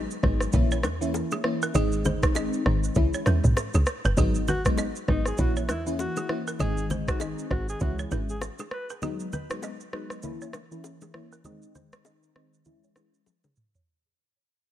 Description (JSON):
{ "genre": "afrobeats", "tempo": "99 BPM", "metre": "4/4", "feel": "swing 58% on 16ths", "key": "unclear", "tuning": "A4 = 440 Hz", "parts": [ { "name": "woody log drum bass", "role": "bass", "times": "0.0-8.5 s", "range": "F#1 to E2", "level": "-27 LUFS", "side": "equal", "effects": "none" }, { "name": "afro-pop drum kit", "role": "drums", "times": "0.1-13.9 s", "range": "kick drum, rim click, shaker, toms", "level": "-28 LUFS", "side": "equal", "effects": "none" }, { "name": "FM electric piano with soft pad layer", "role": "accompaniment", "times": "0.2-13.2 s", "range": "D#3 to E4", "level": "-31 LUFS", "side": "left 2 dB", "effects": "chorus, phaser, low-pass filter" }, { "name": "congas and bongos", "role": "percussion", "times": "0.5-13.6 s", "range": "none", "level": "-34 LUFS", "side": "left 3 dB", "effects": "none" }, { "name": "balafon", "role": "riff", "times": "0.7-13.8 s", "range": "G#4 to D#5", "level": "-34 LUFS", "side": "right 5 dB", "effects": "low-pass filter, digital delay" }, { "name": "breathy alto saxophone", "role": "melody", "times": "4.5-8.9 s", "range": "D#4 to B4", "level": "-36 LUFS", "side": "equal", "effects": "low-pass filter, digital delay" } ], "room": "small room ambience", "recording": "none", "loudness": "-24 LUFS", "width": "side -12 dB against mid", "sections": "0.0-4.2 A section; 4.2-13.9 B section", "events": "fade-out 4.2-13.9; filter sweep 4.2-13.9; drum fill 13.3-13.9", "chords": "0.0 G#m7; 0.5 A#dim; 1.7 G#; 3.0 C#m; 4.2 G#m7; 5.4 A#dim; 6.6 G#; 7.8 C#m; 9.0 G#m7; 10.2 A#dim; 11.4 G#; 12.7 C#m", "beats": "0.54 1.14 | 1.75 2.35 2.96 3.57 | 4.17 4.78 5.39 5.99 | 6.60 7.20 7.81 8.42 | 9.02 9.63 10.23 10.84 | 11.45 12.05 12.66 13.26" }